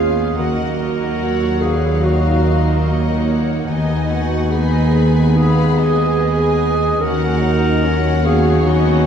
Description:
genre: cinematic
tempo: 73 BPM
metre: 4/4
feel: rubato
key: Eb minor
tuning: A4 = 441 Hz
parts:
  - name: dark studio violin section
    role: melody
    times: 0.0-9.1 s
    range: Db5 to Ab5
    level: -28 LUFS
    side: left 4 dB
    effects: none
  - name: dark clarinet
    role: second line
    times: 0.0-9.1 s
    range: Eb4 to Bb4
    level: -21 LUFS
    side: equal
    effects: none
  - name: dark studio violin section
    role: second line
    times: 0.0-9.1 s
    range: Bb4 to Cb6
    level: -28 LUFS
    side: left 1 dB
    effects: none
  - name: warm studio viola section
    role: accompaniment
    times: 0.0-9.1 s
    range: Gb3 to Ab4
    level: -22 LUFS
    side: right 2 dB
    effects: none
  - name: warm French horn section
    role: sustained chords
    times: 0.0-9.1 s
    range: Bb2 to Db4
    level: -25 LUFS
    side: left 3 dB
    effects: none
  - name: concert harp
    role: arpeggios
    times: 0.0-9.1 s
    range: Eb3 to Bb5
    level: -25 LUFS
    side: left 3 dB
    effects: none
  - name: warm studio cello section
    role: bass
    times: 0.0-9.1 s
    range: Eb2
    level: -21 LUFS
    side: right 1 dB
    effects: none
  - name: warm studio double bass section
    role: bass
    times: 0.0-9.1 s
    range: Eb2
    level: -19 LUFS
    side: right 1 dB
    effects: none
room: wet scoring stage reverb, RT60 1.8 s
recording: heard from further back in the room, nothing above 10.9 kHz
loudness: -14 LUFS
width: side -8 dB against mid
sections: 0.0-9.1 A section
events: none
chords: 0.4 Ebm; 3.7 Abm/Eb; 7.0 Gb/Eb

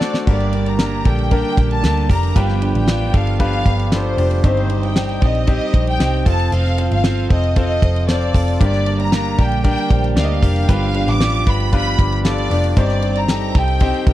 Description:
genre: piano-driven pop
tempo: 115 BPM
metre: 4/4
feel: straight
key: G minor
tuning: A4 = 439 Hz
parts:
  - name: warm studio violin section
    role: melody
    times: 0.0-14.1 s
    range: C5 to D6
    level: -23 LUFS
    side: equal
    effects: slapback echo
  - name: clear concert grand piano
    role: accompaniment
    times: 0.0-14.1 s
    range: G2 to F5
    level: -23 LUFS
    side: left 6 dB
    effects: none
  - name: glass harmonica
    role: sustained chords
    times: 0.0-14.1 s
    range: Eb4 to Eb6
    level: -34 LUFS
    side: right 3 dB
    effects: none
  - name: electric guitar at the edge of break-up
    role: riff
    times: 0.0-14.1 s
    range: G2 to A4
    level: -25 LUFS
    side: right 8 dB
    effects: phaser
  - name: damped 70s drum kit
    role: drums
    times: 0.0-14.1 s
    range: crash cymbal, hi-hat, kick drum, ride cymbal, snare drum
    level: -16 LUFS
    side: equal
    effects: none
  - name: vintage muted picked electric bass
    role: bass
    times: 0.3-14.1 s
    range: F1 to D2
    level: -18 LUFS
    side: equal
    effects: none
room: little or no reverb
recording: dry, close 1970s-style studio recording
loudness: -14 LUFS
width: side -14 dB against mid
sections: 0.3-14.1 A section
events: break 0.0; drum fill 0.0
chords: 0.3 Gm; 2.4 G7; 4.4 Cm/G; 6.3 F; 8.6 Gm; 10.7 G7; 12.8 Cm/G

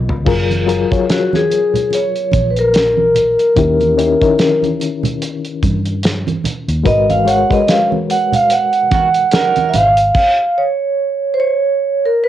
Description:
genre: lush 1970s-style soul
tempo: 73 BPM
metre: 4/4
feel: swing 58% on 16ths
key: F# major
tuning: A4 = 440 Hz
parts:
  - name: reed electric piano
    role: accompaniment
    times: 0.0-10.2 s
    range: C#3 to D#5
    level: -19 LUFS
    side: left 7 dB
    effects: fast tremolo, cassette tape
  - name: vintage muted fingered electric bass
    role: bass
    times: 0.0-10.1 s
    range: F#1 to G2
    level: -19 LUFS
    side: equal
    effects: none
  - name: cloth-damped thuddy drum kit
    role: drums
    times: 0.1-10.4 s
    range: crash cymbal, hi-hat, kick drum, snare drum, toms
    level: -19 LUFS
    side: equal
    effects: cassette tape
  - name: congas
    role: percussion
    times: 0.3-10.0 s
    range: none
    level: -22 LUFS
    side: right 6 dB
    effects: none
  - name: vibraphone with medium mallets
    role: melody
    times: 1.1-12.3 s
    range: F#4 to F#5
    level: -13 LUFS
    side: right 1 dB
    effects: cassette tape
  - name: clear horn section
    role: stabs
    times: 8.9-9.9 s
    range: D#3 to A#4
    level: -21 LUFS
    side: right 7 dB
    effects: cassette tape
room: moderate booth ambience, RT60 0.2 s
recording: home recording on cassette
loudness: -12 LUFS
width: side -12 dB against mid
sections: 0.3-12.3 A section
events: drum fill 0.0; vibraphone solo 0.3-12.3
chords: 0.3 F#maj9; 3.6 D#7b9; 6.9 G#m9; 10.2 N.C.

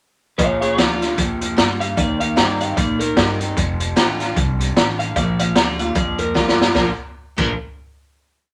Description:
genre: rockabilly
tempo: 151 BPM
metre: 4/4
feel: swing 59% on 8ths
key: Bb major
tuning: A4 = 436 Hz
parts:
  - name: electric guitar through a small old amp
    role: melody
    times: 0.4-7.5 s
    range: Ab4 to F5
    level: -26 LUFS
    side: equal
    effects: none
  - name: picked steel-string acoustic guitar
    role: accompaniment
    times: 0.4-7.5 s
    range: F2 to G4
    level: -28 LUFS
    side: equal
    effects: none
  - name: electric guitar through a small old amp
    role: riff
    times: 0.4-7.5 s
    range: F2 to D4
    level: -28 LUFS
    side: equal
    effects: none
  - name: upright bass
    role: bass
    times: 0.4-7.5 s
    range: F1 to Bb2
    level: -28 LUFS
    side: equal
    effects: none
  - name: raw garage drum kit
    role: drums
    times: 0.4-7.5 s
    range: crash cymbal, hi-hat, kick drum, snare drum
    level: -21 LUFS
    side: equal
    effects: none
room: light reverb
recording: none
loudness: -19 LUFS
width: mono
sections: 0.4-6.7 A section; 6.7-8.3 final chord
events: drum fill 6.4-6.7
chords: 0.4 Bb; 2.0 Eb; 3.6 F7; 5.2 Bb

